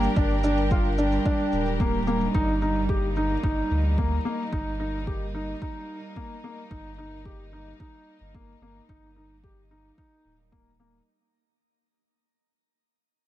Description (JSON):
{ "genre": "piano and strings electronica", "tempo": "110 BPM", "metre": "4/4", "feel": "straight", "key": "unclear", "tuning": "A4 = 440 Hz", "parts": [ { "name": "clear studio string section", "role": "sustained chords", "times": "0.0-11.0 s", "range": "G3 to Bb4", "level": "-31 LUFS", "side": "right 1 dB", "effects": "sidechain pumping, shimmer reverb" }, { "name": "felt-muted upright piano", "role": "riff", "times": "0.0-11.0 s", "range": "Bb3 to G4", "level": "-28 LUFS", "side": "left 1 dB", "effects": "digital delay, shimmer reverb" }, { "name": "warm sub bass", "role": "bass", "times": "0.0-11.0 s", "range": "D1 to D2", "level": "-28 LUFS", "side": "equal", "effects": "sidechain pumping" }, { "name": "shaker", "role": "drums", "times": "0.0-11.0 s", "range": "none", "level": "-53 LUFS", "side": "right 1 dB", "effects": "none" }, { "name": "electronic kick drum", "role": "drums", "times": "0.2-10.6 s", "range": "none", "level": "-27 LUFS", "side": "equal", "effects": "none" } ], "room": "light reverb, small room ambience", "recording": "dark, warm production", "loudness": "-23 LUFS", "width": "side -14 dB against mid", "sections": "0.0-11.1 A section", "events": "fade-out 0.0-11.1", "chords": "0.0 Gm; 2.3 Eb/G" }